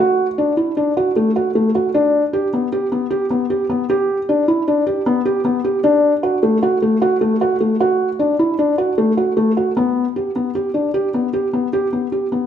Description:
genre	contemporary instrumental, contemporary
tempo	153 BPM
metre	5/4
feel	straight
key	unclear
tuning	A4 = 440 Hz
part	felt-muted upright piano	solo	0.0-12.5 s	A3 to G4	-15 LUFS	equal	none
room	wet recital hall reverb, RT60 1.5 s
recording	nothing above 10.4 kHz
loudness	-15 LUFS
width	side -9 dB against mid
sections	0.0-9.8 A section; 9.8-12.5 B section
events	none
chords	none

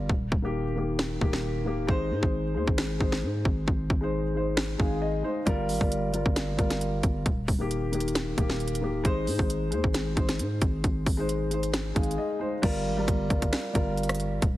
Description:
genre	hip hop, trap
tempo	134 BPM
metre	4/4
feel	half-time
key	G phrygian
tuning	A4 = 440 Hz
part	dark concert grand piano	accompaniment	0.0-14.4 s	Eb3 to F5	-30 LUFS	left 1 dB	none
part	growling 808-style bass	bass	0.0-14.6 s	D1 to Ab2	-30 LUFS	equal	none
part	trap drum kit	drums	0.1-14.5 s	crash cymbal, hi-hat, kick drum, rim click, snare drum	-27 LUFS	equal	none
room	digital ambience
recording	heavily compressed radio sound, multiband compression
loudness	-25 LUFS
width	side -15 dB against mid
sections	0.0-12.6 A section; 12.6-14.6 B section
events	break 0.0-5.5, 12.2-12.6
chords	0.1 Eb; 1.9 Ab; 5.5 Gm7; 7.3 Eb; 9.0 Ab; 12.6 Gm7

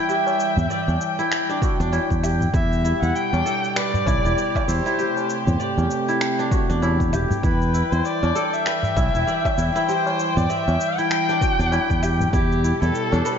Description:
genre	organic downtempo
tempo	98 BPM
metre	4/4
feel	swing 59% on 16ths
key	E minor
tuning	A4 = 440 Hz
part	warm kamancheh	melody	0.0-13.4 s	G4 to G5	-25 LUFS	left 1 dB	analog delay
part	dark studio string section	sustained chords	0.0-13.4 s	B2 to G5	-26 LUFS	equal	sidechain pumping
part	kora	arpeggios	0.0-13.4 s	D4 to D5	-25 LUFS	left 1 dB	analog delay
part	electronic shaker, finger snaps and woodblock	drums	0.1-13.4 s	none	-31 LUFS	equal	overdrive
part	tabla	percussion	0.3-13.2 s	none	-31 LUFS	left 2 dB	none
part	fretless electric bass	bass	0.6-13.2 s	E1 to E2	-22 LUFS	equal	none
part	electronic kick drum	drums	1.6-12.5 s	none	-24 LUFS	equal	overdrive
room	wet lush hall reverb, RT60 1.7 s, studio reverb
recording	dreamy mix soaked in reverb, nothing above 7.5 kHz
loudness	-18 LUFS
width	side -7 dB against mid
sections	0.0-13.4 A section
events	none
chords	0.0 Emadd9; 2.5 G/E; 5.0 Am7/E; 7.4 Emadd9; 12.3 G/E

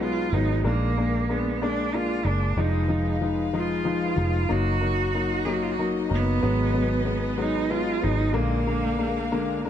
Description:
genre	pop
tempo	62 BPM (dotted quarters)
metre	6/8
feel	straight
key	unclear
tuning	A4 = 440 Hz
part	clear cello	melody	0.0-9.6 s	Bb3 to Ab4	-27 LUFS	right 3 dB	digital delay
part	warm baby grand piano	accompaniment	0.0-9.7 s	D3 to Eb4	-27 LUFS	left 3 dB	none
part	vintage muted fingered electric bass	bass	0.0-9.7 s	F1 to Cb2	-27 LUFS	equal	none
part	clear studio string section	sustained chords	2.6-9.7 s	D4 to F5	-35 LUFS	left 2 dB	none
room	light reverb, small room ambience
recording	dark, warm production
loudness	-22 LUFS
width	side -10 dB against mid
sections	0.0-9.7 A section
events	none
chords	0.0 Abm7/Cb; 0.6 Bb7; 2.6 Fm7b5; 4.5 Ebm/Gb; 6.4 Abm7; 8.4 Bb7

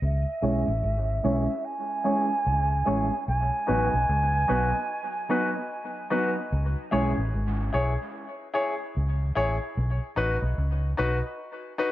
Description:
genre	reggae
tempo	74 BPM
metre	4/4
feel	swing 62% on 16ths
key	C# minor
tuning	A4 = 440 Hz
part	silver concert flute	melody	0.0-6.1 s	E5 to G#5	-28 LUFS	right 2 dB	low-pass filter, dub echo
part	vintage muted fingered electric bass	bass	0.0-11.2 s	G#1 to C#2	-26 LUFS	equal	none
part	mellow electric guitar	accompaniment	0.4-7.2 s	F#3 to E4	-31 LUFS	right 2 dB	harmonic tremolo, low-pass filter, dub echo
part	clear concert grand piano	stabs	0.4-11.9 s	D#4 to C#5	-30 LUFS	left 2 dB	low-pass filter, dub echo
room	wet spring reverb, RT60 1.7 s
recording	none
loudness	-24 LUFS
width	side -14 dB against mid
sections	0.0-11.9 A section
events	filter sweep 0.0-11.9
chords	0.0 C#m; 3.3 B; 6.5 C#m; 9.8 B

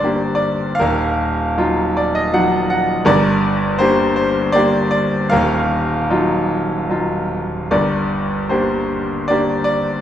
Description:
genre	classical, lyrical solo piano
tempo	78 BPM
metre	3/4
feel	uneven beats, rubato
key	G minor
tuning	A4 = 440 Hz
part	bright grand piano	solo	0.0-10.0 s	Eb1 to Gb5	-15 LUFS	equal	none
room	wet recital hall reverb, RT60 1.3 s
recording	recorded in a church or concert hall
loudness	-15 LUFS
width	side -10 dB against mid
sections	0.0-10.0 A section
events	grand piano fill 1.6-3.1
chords	0.0 Gm; 0.8 Ebmadd9; 3.1 Gm; 5.3 Ebmadd9; 7.7 Gm

